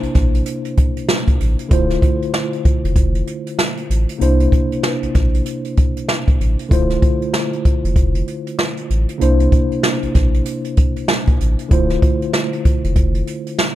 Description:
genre	hip hop, boom-bap hip-hop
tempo	96 BPM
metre	4/4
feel	swing 60% on 16ths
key	D minor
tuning	A4 = 440 Hz
part	mellow tine electric piano	accompaniment	0.0-13.8 s	C3 to C5	-21 LUFS	equal	medium stereo tremolo, cassette tape, high-pass filter, low-pass filter
part	saturated sub bass	bass	0.0-13.2 s	D1 to C2	-17 LUFS	equal	none
part	jazz brush drum kit	drums	0.0-13.8 s	hi-hat, kick drum, snare drum	-16 LUFS	equal	none
room	small room ambience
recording	dark, warm production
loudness	-15 LUFS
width	side -14 dB against mid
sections	0.0-13.8 A section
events	none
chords	0.0 C7; 1.7 Dm7; 4.2 C7; 6.7 Dm7; 9.2 C7; 11.7 Dm7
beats	0.46 1.09 | 1.71 2.34 2.96 3.59 | 4.21 4.84 5.46 6.09 | 6.71 7.34 7.96 8.59 | 9.21 9.84 10.46 11.09 | 11.71 12.34 12.96 13.59

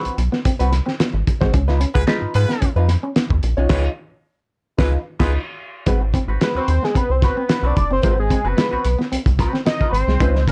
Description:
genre	funk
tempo	111 BPM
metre	4/4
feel	straight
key	unclear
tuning	A4 = 440 Hz
part	hollow-body jazz guitar	accompaniment	0.0-10.5 s	C4 to Db5	-28 LUFS	equal	wah
part	electric guitar at the edge of break-up	riff	0.0-10.5 s	Ab3 to Db4	-28 LUFS	equal	none
part	rubbery square bass	bass	0.1-10.5 s	F1 to Ab2	-21 LUFS	equal	none
part	cloth-damped thuddy drum kit	drums	0.1-10.5 s	crash cymbal, hi-hat, kick drum, snare drum	-22 LUFS	equal	none
part	warm horn section	second line	1.9-5.3 s	Ab3 to Cb5	-28 LUFS	equal	none
part	fat analog lead	melody	6.4-10.5 s	Ab4 to Eb5	-24 LUFS	equal	chorus, phaser
room	light reverb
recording	cassette tape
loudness	-19 LUFS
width	mono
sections	0.0-5.9 A section; 5.9-10.5 B section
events	band accent 3.7-5.9; break 5.3-5.9; analog synth lead solo 5.9-10.5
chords	0.0 Ab7#9; 1.5 Db9; 5.9 Ab7#9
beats	0.45 0.99 | 1.53 2.08 2.62 3.16 | 3.70 4.24 4.79 5.33 | 5.87 6.41 6.95 7.50 | 8.04 8.58 9.12 9.66 | 10.21

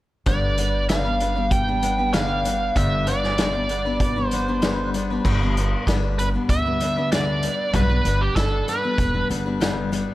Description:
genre	folk rock and heartland rock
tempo	96 BPM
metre	4/4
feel	straight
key	G mixolydian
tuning	A4 = 436 Hz
part	biting lead guitar	melody	0.3-9.3 s	G4 to G5	-25 LUFS	right 2 dB	overdrive, analog delay
part	picked steel-string acoustic guitar	accompaniment	0.3-10.1 s	G2 to B4	-25 LUFS	left 3 dB	none
part	upright bass	bass	0.3-10.0 s	E1 to D2	-25 LUFS	equal	none
part	vintage drum kit	drums	0.3-10.1 s	crash cymbal, hi-hat, kick drum, snare drum	-25 LUFS	equal	none
room	light reverb, small room ambience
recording	none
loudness	-19 LUFS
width	side -16 dB against mid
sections	0.3-5.3 A section; 5.3-10.1 B section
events	none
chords	0.3 G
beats	| 0.27 0.90 1.52 2.14 | 2.76 3.39 4.01 4.63 | 5.25 5.87 6.50 7.12 | 7.74 8.36 8.99 9.61

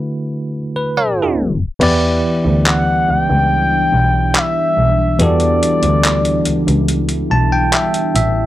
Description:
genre	contemporary R&B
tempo	71 BPM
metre	4/4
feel	straight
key	E dorian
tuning	A4 = 440 Hz
part	bell-like tine electric piano	accompaniment	0.0-8.5 s	D3 to A5	-18 LUFS	right 1 dB	medium stereo tremolo, low-pass filter
part	deep dark ambient pad	sustained chords	2.9-8.5 s	E3 to E4	-23 LUFS	left 1 dB	chorus, built-in reverb
part	rich double bass	bass	1.8-8.5 s	A1 to E2	-17 LUFS	equal	none
part	dusty soul sampler-style drum kit	drums	1.8-8.3 s	crash cymbal, handclaps, hi-hat	-19 LUFS	left 1 dB	none
part	gliding portamento lead	melody	2.7-6.9 s	D5 to G5	-16 LUFS	left 1 dB	chorus, low-pass filter
room	little or no reverb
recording	dry, gritty hardware recording, tape stop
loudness	-13 LUFS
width	side -14 dB against mid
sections	0.0-1.8 A section; 1.8-8.5 B section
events	filter sweep 0.0-1.8; tine electric piano fill 0.5-1.8, 6.9-8.5; tape stop 1.0-1.8; kick muted 1.8-8.5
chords	0.0 D69; 1.8 Em9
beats	0.12 0.96 | 1.81 2.65 3.50 4.34 | 5.19 6.04 6.88 7.72

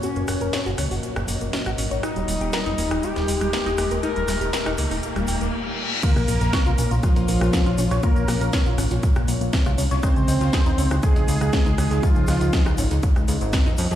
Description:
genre	melodic techno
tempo	120 BPM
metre	4/4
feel	straight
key	Bb minor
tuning	A4 = 444 Hz
part	expressive portamento lead	melody	0.0-12.7 s	F3 to Bb4	-27 LUFS	left 1 dB	analog chorus, digital delay
part	deep dark ambient pad	sustained chords	0.0-14.0 s	Ab3 to Eb5	-32 LUFS	left 1 dB	chorus, built-in reverb, vintage 12-bit sampler grit, sidechain pumping
part	tight sequenced synth	arpeggios	0.0-14.0 s	G3 to G5	-30 LUFS	left 1 dB	chorus, sidechain pumping, digital delay
part	analog drone	drone	0.0-5.5 s	Bb2	-38 LUFS	equal	none
part	house drum kit	drums	0.0-14.0 s	crash cymbal, hi-hat, rim click, snare drum	-29 LUFS	equal	high-pass filter on snare, high-pass filter on hats, high-pass filter on cymbals
part	tube shaker	percussion	0.0-14.0 s	none	-39 LUFS	left 5 dB	none
part	riser, reverse cymbal and sub drop	sound effects	0.0-8.0 s	none	-31 LUFS	equal	none
part	fat analog bass	bass	0.2-14.0 s	Eb1 to F2	-24 LUFS	equal	sidechain pumping
part	big bright polysynth	second line	6.0-12.7 s	F4 to C5	-32 LUFS	equal	sidechain pumping, digital delay
part	breakbeat sampler-style drum kit	drums	6.0-14.0 s	hi-hat, shaker, snare drum	-40 LUFS	left 1 dB	none
part	electronic kick drum	drums	6.0-13.6 s	none	-20 LUFS	equal	none
room	light reverb, digital ambience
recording	played on a big sound system in a bare room, stone room reverb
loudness	-19 LUFS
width	side -11 dB against mid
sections	0.0-6.0 A section; 6.0-14.0 B section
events	build-up 0.0-6.0; riser 0.0-5.5; filter sweep on ambient pad 0.0-6.0; reverse cymbal 5.0-6.0; drop 6.0-14.0; impact 6.0-8.0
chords	0.0 Gb; 2.0 Eb; 6.0 Bbm; 10.0 Dbadd9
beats	| 0.03 0.53 1.03 1.53 | 2.03 2.53 3.03 3.53 | 4.03 4.53 5.03 5.53 | 6.03 6.53 7.03 7.53 | 8.03 8.53 9.03 9.53 | 10.03 10.53 11.03 11.53 | 12.03 12.53 13.03 13.53

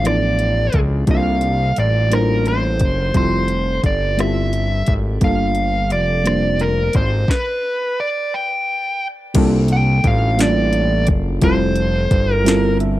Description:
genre	slow six-eight R&B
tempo	58 BPM (dotted quarters)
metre	6/8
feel	straight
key	unclear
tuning	A4 = 440 Hz
part	dark smooth lead guitar	melody	0.0-12.8 s	Bb4 to G5	-20 LUFS	right 1 dB	overdrive, tape echo
part	mellow FM electric piano	accompaniment	0.0-13.0 s	F3 to E5	-21 LUFS	right 1 dB	chorus
part	fat analog bass	bass	0.0-13.0 s	F1 to C#2	-19 LUFS	equal	none
part	smooth R&B drum kit	drums	0.1-13.0 s	crash cymbal, hi-hat, kick drum, rim click, snare drum	-19 LUFS	equal	overdrive
room	little or no reverb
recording	dry, close 1970s-style studio recording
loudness	-15 LUFS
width	side -15 dB against mid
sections	0.0-9.3 A section; 9.3-13.0 B section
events	stop 7.3-9.3; FM electric piano fill 12.5-13.0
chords	0.0 G13 (rootless); 1.1 C13sus4; 3.1 Fmaj9; 5.2 Gm9; 7.3 N.C.; 9.3 C13sus4; 11.4 Fmaj9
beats	0.04 | 1.07 2.11 | 3.14 4.18 | 5.21 6.25 | 7.28 8.31 | 9.35 10.38 | 11.42 12.45

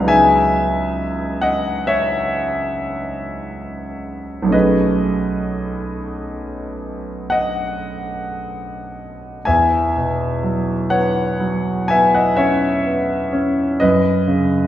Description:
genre	classical, impressionist solo piano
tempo	35-46 BPM (dotted quarters)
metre	9/8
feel	rubato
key	E major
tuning	A4 = 440 Hz
part	clear grand piano	solo	0.0-14.7 s	B1 to G#5	-16 LUFS	equal	none
room	wet recital hall reverb, RT60 1.6 s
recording	heard from further back in the room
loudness	-16 LUFS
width	side -12 dB against mid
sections	0.0-9.5 A section; 9.5-14.7 B section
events	none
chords	0.1 C#m11; 4.5 B13; 9.5 E69; 13.8 F#5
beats	| 0.10 1.45 2.88 | 4.53 6.22 7.87 | 9.46 10.92 12.38 | 13.82

